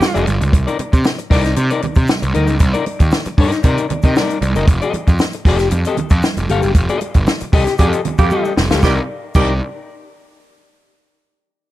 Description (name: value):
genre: funk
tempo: 116 BPM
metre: 4/4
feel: straight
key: C dorian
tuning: A4 = 440 Hz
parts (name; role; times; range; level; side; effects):
- growling tenor saxophone; second line; 0.0-0.2, 7.8-9.5 s; G4; -22 LUFS; right 6 dB; plate reverb
- electric guitar at the edge of break-up; accompaniment; 0.0-9.5 s; Eb4 to F5; -20 LUFS; left 5 dB; spring reverb, plate reverb
- compact cocktail drum kit; drums; 0.0-9.5 s; crash cymbal, hi-hat, kick drum, snare drum; -15 LUFS; equal; none
- congas; percussion; 0.0-9.6 s; none; -26 LUFS; right 6 dB; none
- egg shaker; percussion; 0.0-9.6 s; none; -42 LUFS; left 5 dB; none
- fuzz picked electric bass; bass; 0.2-9.6 s; F1 to C3; -18 LUFS; equal; overdrive
room: little or no reverb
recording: none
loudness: -13 LUFS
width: side -15 dB against mid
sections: 0.0-8.8 A section; 8.8-10.9 B section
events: band accent 0.0-0.5, 6.8-8.8; drum fill 8.3-8.8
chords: 0.0 F9; 0.5 Cm9; 4.7 F9; 8.8 Cm9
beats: 0.01 | 0.53 1.05 1.57 2.09 | 2.61 3.12 3.64 4.16 | 4.68 5.20 5.72 6.24 | 6.75 7.27 7.79 8.31 | 8.83 9.35